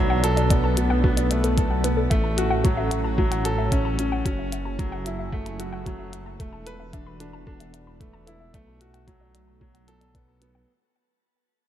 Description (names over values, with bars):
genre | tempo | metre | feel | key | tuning
piano and strings electronica | 112 BPM | 4/4 | straight | unclear | A4 = 440 Hz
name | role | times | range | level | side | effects
lush unison pad | sustained chords | 0.0-10.7 s | E3 to A4 | -32 LUFS | equal | chorus, phaser, sidechain pumping, shimmer reverb
warbly dusty pluck | arpeggios | 0.0-10.6 s | F#4 to B5 | -31 LUFS | left 3 dB | chorus, cassette tape, sidechain pumping, ping-pong delay, shimmer reverb
clear upright piano | riff | 0.0-10.7 s | F#3 to B4 | -28 LUFS | right 1 dB | ping-pong delay, shimmer reverb
dark detuned saw bass | bass | 0.0-10.7 s | E1 to B1 | -26 LUFS | equal | sidechain pumping
electronic hi-hat | drums | 0.2-10.5 s | none | -33 LUFS | left 2 dB | none
electronic kick drum | drums | 0.5-10.3 s | none | -23 LUFS | equal | none
room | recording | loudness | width
light reverb, digital ambience | none | -21 LUFS | side -11 dB against mid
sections
0.0-10.7 A section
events
fade-out 0.0-10.7; filter sweep on analog synth pad 0.0-10.7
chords
0.0 Bm7; 2.1 A6; 4.3 F#m7; 6.4 E7sus4; 8.5 Bm7